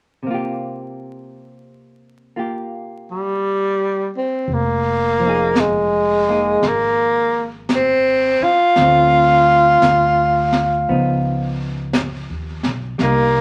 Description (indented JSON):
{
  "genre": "jazz ballad",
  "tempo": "56 BPM",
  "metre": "4/4",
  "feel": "swing 66% on 8ths",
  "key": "F minor",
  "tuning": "A4 = 440 Hz",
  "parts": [
    { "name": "hollow-body jazz guitar", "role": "accompaniment", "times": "0.2-13.4 s", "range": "C3 to Ab4", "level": "-26 LUFS", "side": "equal", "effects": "none" },
    { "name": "breathy tenor saxophone", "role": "melody", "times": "3.1-13.4 s", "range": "G3 to F4", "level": "-17 LUFS", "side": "equal", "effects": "none" },
    { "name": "upright bass", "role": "bass", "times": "4.5-13.4 s", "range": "F1 to Eb2", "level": "-27 LUFS", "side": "equal", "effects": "none" },
    { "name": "jazz brush drum kit", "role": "drums", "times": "4.5-13.4 s", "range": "brushed snare drum, hi-hat, snare drum", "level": "-26 LUFS", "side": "equal", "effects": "none" }
  ],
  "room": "moderate club reverb, RT60 0.7 s",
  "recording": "vinyl crackle",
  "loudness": "-17 LUFS",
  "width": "mono",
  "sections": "0.2-4.5 A section; 4.5-13.4 B section",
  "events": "none",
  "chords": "0.2 C7sus4; 4.5 Fm7; 8.8 Dm7; 10.9 Db9"
}